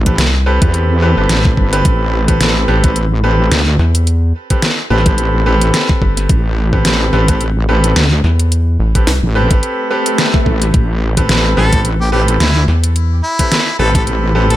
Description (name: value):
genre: glitch hop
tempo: 108 BPM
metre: 4/4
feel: swing 56% on 16ths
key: A minor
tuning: A4 = 441 Hz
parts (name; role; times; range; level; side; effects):
- wobble bass; bass; 0.0-14.6 s; G1 to E2; -13 LUFS; equal; chorus
- bright concert grand piano; stabs; 0.1-14.6 s; C4 to B4; -18 LUFS; equal; sidechain pumping, ping-pong delay
- electronic kick drum; drums; 0.1-14.0 s; none; -14 LUFS; equal; overdrive
- pop drum kit; drums; 0.1-14.6 s; hi-hat, snare drum; -16 LUFS; equal; overdrive
- rubbery square bass; bass; 0.2-13.2 s; G1 to E2; -12 LUFS; equal; none
- swell; sound effects; 9.8-10.7 s; none; -22 LUFS; equal; none
- bright harmonica; melody; 11.6-14.6 s; E4 to A4; -19 LUFS; left 1 dB; vintage 12-bit sampler grit, ping-pong delay
room: little or no reverb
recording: none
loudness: -10 LUFS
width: side -14 dB against mid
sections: 0.0-14.6 A section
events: swell 9.8-10.7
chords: 0.0 Am9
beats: 0.18 0.74 1.30 | 1.85 2.41 2.96 3.52 | 4.07 4.63 5.18 5.74 | 6.30 6.85 7.41 7.96 | 8.52 9.07 9.63 10.19 | 10.74 11.30 11.85 12.41 | 12.96 13.52 14.07